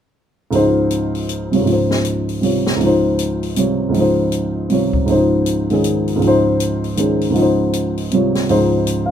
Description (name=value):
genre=modal jazz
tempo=158 BPM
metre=3/4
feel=swing 64% on 8ths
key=Db lydian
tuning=A4 = 442 Hz
part: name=dark upright piano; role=accompaniment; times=0.5-9.1 s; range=Db2 to F5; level=-14 LUFS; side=equal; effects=none
part: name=open jazz drum kit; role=drums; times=0.5-9.0 s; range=hi-hat, kick drum, snare drum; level=-26 LUFS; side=left 2 dB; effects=none
room=light reverb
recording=minimal, uncompressed stereo recording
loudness=-14 LUFS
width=side -9 dB against mid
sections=0.5-9.1 A section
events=none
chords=0.5 Dbmaj9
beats=| 0.53 0.90 1.28 | 1.66 2.04 2.42 | 2.80 3.18 3.56 | 3.94 4.32 4.70 | 5.08 5.46 5.84 | 6.21 6.59 6.97 | 7.35 7.73 8.11 | 8.49 8.87